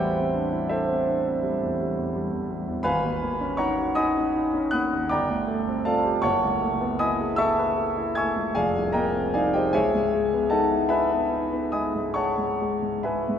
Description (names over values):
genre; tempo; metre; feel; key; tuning
classical, impressionist solo piano; 44-57 BPM (dotted quarters); 9/8; rubato; F# dorian; A4 = 443 Hz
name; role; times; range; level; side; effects
clear concert grand piano; solo; 0.0-13.4 s; F1 to G#6; -22 LUFS; equal; none
room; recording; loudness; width
wet church reverb, RT60 3.1 s; recorded in a church or concert hall; -22 LUFS; side -8 dB against mid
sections
0.0-13.4 A section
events
none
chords
0.0 Am9; 2.9 G#m11; 5.1 Gm11; 6.2 F#m11; 8.6 Fm11; 9.7 C#m9